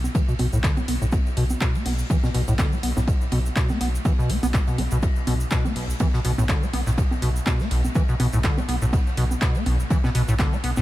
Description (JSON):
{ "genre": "acid house", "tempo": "123 BPM", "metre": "4/4", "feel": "swing 55% on 16ths", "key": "B minor", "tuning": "A4 = 439 Hz", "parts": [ { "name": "round analog bass", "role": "bass", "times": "0.0-10.8 s", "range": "B1", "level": "-25 LUFS", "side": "equal", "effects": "sidechain pumping" }, { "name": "punchy analog drum machine", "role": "drums", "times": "0.0-10.8 s", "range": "congas, handclaps, hi-hat", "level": "-30 LUFS", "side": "right 1 dB", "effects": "overdrive" }, { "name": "tube shaker", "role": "percussion", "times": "0.0-10.8 s", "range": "none", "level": "-42 LUFS", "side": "right 2 dB", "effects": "none" }, { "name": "acid bass, square", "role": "riff", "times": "0.1-10.8 s", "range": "B1 to B3", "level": "-25 LUFS", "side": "equal", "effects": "lush chorus, vintage 12-bit sampler grit, sidechain pumping, ping-pong delay" }, { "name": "electronic kick drum", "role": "drums", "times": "0.1-10.5 s", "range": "none", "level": "-22 LUFS", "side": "equal", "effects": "overdrive" }, { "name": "loose indie drum kit", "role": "drums", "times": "0.1-10.8 s", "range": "hi-hat, ride cymbal, snare drum", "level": "-37 LUFS", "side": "right 1 dB", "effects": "high-pass filter on cymbals, high-pass filter on hats, high-pass filter on snare, high-pass filter on room" } ], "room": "light reverb, studio ambience", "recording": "none", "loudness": "-20 LUFS", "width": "side -16 dB against mid", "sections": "0.0-10.8 A section", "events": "filter sweep on acid bass 0.0-10.8", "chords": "none" }